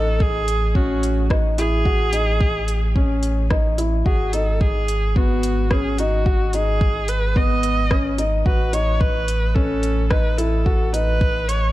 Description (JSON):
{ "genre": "piano and strings electronica", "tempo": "109 BPM", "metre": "4/4", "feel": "straight", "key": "unclear", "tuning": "A4 = 440 Hz", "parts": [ { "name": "warm viola", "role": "melody", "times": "0.0-11.7 s", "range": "F#4 to D#5", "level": "-25 LUFS", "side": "right 1 dB", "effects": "shimmer reverb" }, { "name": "felt-muted upright piano", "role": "riff", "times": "0.0-11.4 s", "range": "B3 to F#4", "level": "-25 LUFS", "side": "left 2 dB", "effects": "digital delay, shimmer reverb" }, { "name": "warm sub bass", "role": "bass", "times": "0.0-11.7 s", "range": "G#1 to A1", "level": "-22 LUFS", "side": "equal", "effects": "sidechain pumping" }, { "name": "electronic kick drum", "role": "drums", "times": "0.2-11.3 s", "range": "none", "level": "-20 LUFS", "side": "equal", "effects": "studio reverb" }, { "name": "deep house drum kit", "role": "drums", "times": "0.5-11.6 s", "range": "hi-hat, rim click", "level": "-29 LUFS", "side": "left 1 dB", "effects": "studio reverb" } ], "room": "small room ambience", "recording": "dark, warm production", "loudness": "-17 LUFS", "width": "side -16 dB against mid", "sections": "0.0-11.7 A section", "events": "none", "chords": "0.0 A; 4.1 G#m7; 8.5 A6" }